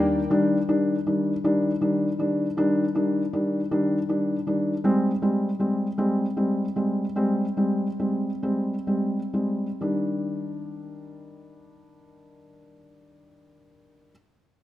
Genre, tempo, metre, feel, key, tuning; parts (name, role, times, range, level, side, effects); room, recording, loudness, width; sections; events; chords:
pop; 42-53 BPM (dotted quarters); 6/8; straight; Eb major; A4 = 440 Hz
felt-muted upright piano; accompaniment; 0.0-14.1 s; Eb3 to D4; -22 LUFS; equal
moderate plate reverb, RT60 2.7 s; rough home demo mix; -22 LUFS; side -14 dB against mid
0.3-9.8 A section; 9.8-12.7 B section
slowing down 4.8-9.8
0.3 Ebmaj7; 4.8 Abmaj7; 9.8 Ebmaj7